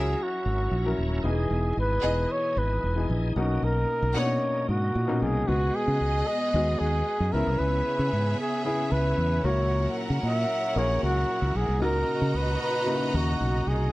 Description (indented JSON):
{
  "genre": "disco",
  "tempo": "114 BPM",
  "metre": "4/4",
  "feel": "straight",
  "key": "unclear",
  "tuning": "A4 = 439 Hz",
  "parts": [
    { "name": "breathy flugelhorn", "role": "melody", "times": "0.0-13.9 s", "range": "F#4 to E5", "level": "-28 LUFS", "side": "equal", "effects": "none" },
    { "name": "warm studio string section", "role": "second line", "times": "0.0-13.9 s", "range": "B3 to A#5", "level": "-33 LUFS", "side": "right 1 dB", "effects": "none" },
    { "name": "warm baby grand piano", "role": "accompaniment", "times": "0.0-13.9 s", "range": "B2 to A#4", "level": "-32 LUFS", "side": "left 2 dB", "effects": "none" },
    { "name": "bright tonewheel organ", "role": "sustained chords", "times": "0.0-13.9 s", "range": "A#2 to A#4", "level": "-37 LUFS", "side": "right 1 dB", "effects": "overdrive, chorus vibrato, slow rotary speaker" },
    { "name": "fingered electric bass", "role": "bass", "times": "0.0-13.9 s", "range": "D#1 to C#3", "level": "-26 LUFS", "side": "equal", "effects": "none" }
  ],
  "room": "little or no reverb",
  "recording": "dry, close 1970s-style studio recording",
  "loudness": "-23 LUFS",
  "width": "side -18 dB against mid",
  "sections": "0.0-5.5 A section; 5.5-13.9 B section",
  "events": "none",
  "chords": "0.0 F#7; 1.2 Emaj7; 3.4 Bmaj9; 5.5 G#m7/C#; 7.3 C#m7; 9.4 F#7/C#; 11.8 Bmaj9/C#"
}